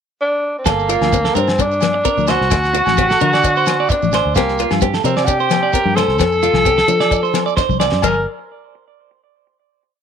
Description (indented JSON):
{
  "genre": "highlife guitar band",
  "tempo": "130 BPM",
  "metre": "4/4",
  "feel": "swing 53% on 16ths",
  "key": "G minor",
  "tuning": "A4 = 440 Hz",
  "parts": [
    { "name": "warm tenor saxophone", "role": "melody", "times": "0.2-8.2 s", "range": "Bb3 to Bb4", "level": "-16 LUFS", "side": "left 1 dB", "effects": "none" },
    { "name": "picked acoustic archtop guitar", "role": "accompaniment", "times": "0.7-8.2 s", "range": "G3 to D4", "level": "-24 LUFS", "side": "left 13 dB", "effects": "none" },
    { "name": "clean electric guitar", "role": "arpeggios", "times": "0.7-8.1 s", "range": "F4 to D5", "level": "-20 LUFS", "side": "right 12 dB", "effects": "tape echo" },
    { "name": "fingered electric bass", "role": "bass", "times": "0.7-8.2 s", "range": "G1 to F3", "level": "-22 LUFS", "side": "equal", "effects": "none" },
    { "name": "damped 70s drum kit", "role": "drums", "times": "0.7-8.1 s", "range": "crash cymbal, kick drum, snare drum", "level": "-22 LUFS", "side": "left 1 dB", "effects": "none" },
    { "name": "agogo bells", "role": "percussion", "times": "0.7-8.1 s", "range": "none", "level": "-27 LUFS", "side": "left 10 dB", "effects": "none" },
    { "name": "shekere", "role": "percussion", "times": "0.7-8.2 s", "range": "none", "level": "-27 LUFS", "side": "right 7 dB", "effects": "none" },
    { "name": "congas", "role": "percussion", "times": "1.0-8.2 s", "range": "none", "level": "-25 LUFS", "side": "left 17 dB", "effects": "none" }
  ],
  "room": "moderate spring reverb, RT60 1.2 s",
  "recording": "1960s-style stereo with parts hard left and right",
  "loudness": "-13 LUFS",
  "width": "side -7 dB against mid",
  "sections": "0.0-0.7 pickup bar; 0.7-8.0 groove; 8.0-9.9 final chord",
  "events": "drum fill 7.6-8.0",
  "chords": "0.0 N.C.; 0.7 Gmadd9; 2.5 D; 4.4 Csus2; 6.2 F; 8.0 N.C.",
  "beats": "0.20 | 0.66 1.13 1.59 2.05 | 2.52 2.98 3.44 3.90 | 4.36 4.82 5.27 5.73 | 6.19 6.65 7.11 7.57 | 8.03"
}